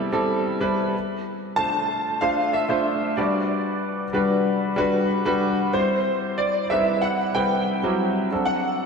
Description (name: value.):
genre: pop.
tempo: 94 BPM.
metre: 4/4.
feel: straight.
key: G major.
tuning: A4 = 440 Hz.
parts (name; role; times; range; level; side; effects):
clear concert grand piano; accompaniment; 0.0-8.9 s; F#3 to C5; -22 LUFS; equal; lush chorus.
clear grand piano; melody; 1.6-8.9 s; C5 to A5; -24 LUFS; equal; ensemble chorus, diffuse ambient delay.
room: wet lush hall reverb, RT60 2.8 s.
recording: dreamy mix soaked in reverb.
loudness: -20 LUFS.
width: side -5 dB against mid.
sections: 0.0-8.9 A section.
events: none.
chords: 0.0 Am7; 0.9 Dm7; 3.2 Gmaj7; 5.7 Cmaj7; 8.3 D7.